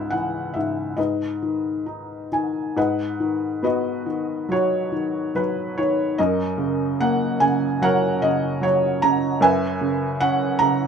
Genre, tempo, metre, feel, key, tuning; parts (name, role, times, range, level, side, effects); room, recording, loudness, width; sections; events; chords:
classical, lyrical solo piano; 65-77 BPM; 4/4; rubato; G# minor; A4 = 440 Hz
felt-muted upright piano; solo; 0.0-10.9 s; C#2 to A#5; -20 LUFS; equal
light reverb; minimal, uncompressed stereo recording; -20 LUFS; side -6 dB against mid
0.0-2.8 A section; 2.8-10.9 A section
0.0 C#m7; 1.0 G#m; 2.8 G#m7; 6.2 D#m7/F#; 9.4 F#7sus4